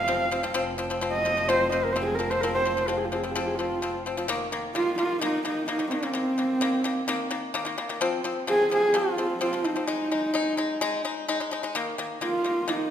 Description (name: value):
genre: mongolian traditional, Mongolian folk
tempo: 128 BPM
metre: 4/4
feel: straight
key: unclear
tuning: A4 = 440 Hz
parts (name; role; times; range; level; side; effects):
- dark horsehead fiddle; melody; 0.0-12.9 s; C4 to F5; -25 LUFS; right 1 dB; none
- pipa; arpeggios; 0.0-12.9 s; Eb3 to Eb4; -28 LUFS; left 3 dB; none
- rich double bass; drone; 0.0-4.3 s; F1; -37 LUFS; right 2 dB; none
room: wet recital hall reverb, RT60 1.6 s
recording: minimal, uncompressed stereo recording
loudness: -24 LUFS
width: side -9 dB against mid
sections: 0.0-4.3 A section; 4.3-12.9 B section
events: none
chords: 0.0 F5; 4.3 Eb5; 8.0 F5; 9.9 Ab5; 11.8 Eb5